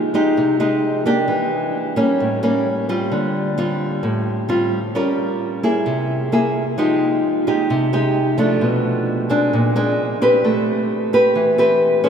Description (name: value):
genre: bossa nova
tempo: 131 BPM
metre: 4/4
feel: straight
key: unclear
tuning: A4 = 440 Hz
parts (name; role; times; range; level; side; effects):
- nylon-string guitar; solo; 0.0-12.1 s; A2 to C5; -16 LUFS; equal; none
room: wet cathedral reverb, RT60 6.3 s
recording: in a vast, echoing space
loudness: -16 LUFS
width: side -7 dB against mid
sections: 0.0-12.1 A section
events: none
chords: 0.0 Fm9; 1.3 Em7b5; 2.2 A7b9; 3.1 Dm7; 4.9 Gm7b5; 5.9 C7b13; 6.8 Fm9; 8.6 Bm7b5; 9.5 Bb9; 10.4 Am9